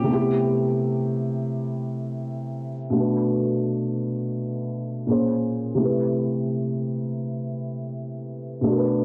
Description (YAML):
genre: hip hop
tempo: 84 BPM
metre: 4/4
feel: swing 60% on 16ths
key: A dorian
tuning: A4 = 443 Hz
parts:
  - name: hollow-body jazz guitar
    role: melody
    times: 0.0-2.2 s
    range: G4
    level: -37 LUFS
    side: equal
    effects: low-pass filter, cassette tape, tape echo
  - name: felt-muted upright piano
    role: accompaniment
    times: 0.0-9.0 s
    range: Bb2 to C5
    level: -25 LUFS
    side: equal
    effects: cassette tape, low-pass filter
room: moderate spring reverb, RT60 1.2 s, studio reverb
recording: home recording on cassette, low-pass filter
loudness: -25 LUFS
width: mono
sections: 0.0-2.9 A section; 2.9-9.0 B section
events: none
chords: 0.1 Am7/C; 2.9 Bm7; 5.1 Bbm7; 5.8 Am7/C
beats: | 0.08 0.80 1.51 2.22 | 2.94 3.65 4.37 5.08 | 5.80 6.51 7.22 7.94 | 8.65